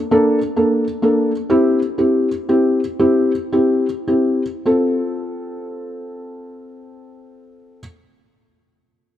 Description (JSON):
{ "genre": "pop", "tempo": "34-45 BPM (dotted quarters)", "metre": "6/8", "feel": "straight", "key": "F major", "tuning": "A4 = 440 Hz", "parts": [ { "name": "felt-muted upright piano", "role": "accompaniment", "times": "0.1-7.8 s", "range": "Bb3 to A4", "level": "-16 LUFS", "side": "left 1 dB", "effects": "none" } ], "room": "moderate plate reverb, RT60 3.2 s", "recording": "none", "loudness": "-15 LUFS", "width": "side -11 dB against mid", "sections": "0.0-4.7 A section; 4.7-8.2 B section", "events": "slowing down 0.0-4.7", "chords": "0.0 Bbmaj7; 1.5 C; 4.7 F" }